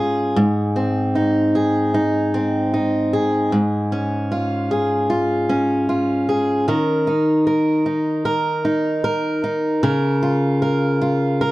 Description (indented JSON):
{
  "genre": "pop",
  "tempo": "76 BPM",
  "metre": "4/4",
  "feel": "straight",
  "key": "unclear",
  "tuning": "A4 = 440 Hz",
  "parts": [
    { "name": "picked steel-string acoustic guitar", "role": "solo", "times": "0.0-11.5 s", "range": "Ab2 to Bb4", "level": "-17 LUFS", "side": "equal", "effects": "none" }
  ],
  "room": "light reverb",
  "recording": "dry, close 1970s-style studio recording",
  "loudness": "-17 LUFS",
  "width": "side -18 dB against mid",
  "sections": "0.0-6.7 A section; 6.7-11.5 B section",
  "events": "none",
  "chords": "0.4 Ab; 3.5 Db/Ab; 6.7 Eb5; 9.8 Db6"
}